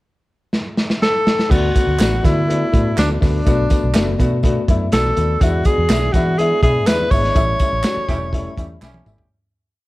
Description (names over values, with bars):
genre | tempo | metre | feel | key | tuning
uptempo 1960s-style soul | 123 BPM | 4/4 | straight | D major | A4 = 442 Hz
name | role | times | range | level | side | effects
crunchy breakbeat drum kit | drums | 0.5-9.3 s | crash cymbal, hi-hat, kick drum, snare drum, toms | -18 LUFS | equal | none
breathy tenor saxophone | melody | 1.0-8.8 s | D4 to C#5 | -19 LUFS | equal | none
warm upright piano | accompaniment | 1.5-9.2 s | G3 to F#4 | -22 LUFS | left 3 dB | none
vintage muted fingered electric bass | bass | 1.5-9.2 s | E1 to E3 | -20 LUFS | equal | none
congas | percussion | 1.5-9.2 s | none | -32 LUFS | right 3 dB | none
tambourine and handclaps | percussion | 1.5-9.2 s | none | -33 LUFS | right 6 dB | none
warm horn section | second line | 8.1-9.3 s | C#4 to G4 | -36 LUFS | right 1 dB | none
room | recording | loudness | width
light reverb, small room ambience | dark, warm production | -14 LUFS | side -18 dB against mid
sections
0.0-1.5 pickup bar; 1.5-9.3 verse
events
drum fill 0.5-1.5, 8.8-9.3; fade-out 7.4-9.3; band accent 7.4-9.3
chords
0.0 N.C.; 1.5 D6; 3.5 Bm7; 5.4 E7; 7.4 A7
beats
0.03 0.53 1.02 | 1.51 2.00 2.49 2.98 | 3.47 3.95 4.44 4.93 | 5.41 5.90 6.39 6.87 | 7.36 7.85 8.33 8.82